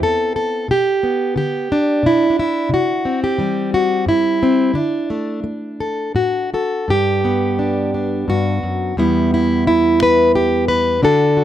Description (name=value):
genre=folk, solo fingerstyle acoustic guitar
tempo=88 BPM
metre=3/4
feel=rubato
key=unclear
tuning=A4 = 440 Hz
part: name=fingerpicked plugged-in steel-string acoustic guitar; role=solo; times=0.0-11.4 s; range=E2 to B4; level=-14 LUFS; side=equal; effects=none
room=light reverb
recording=dry, close 1970s-style studio recording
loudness=-15 LUFS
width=side -11 dB against mid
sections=0.0-6.9 A section; 6.9-11.4 B section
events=none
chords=0.0 Amadd9; 0.7 G/B; 2.7 C; 4.7 D; 6.9 G; 9.0 Em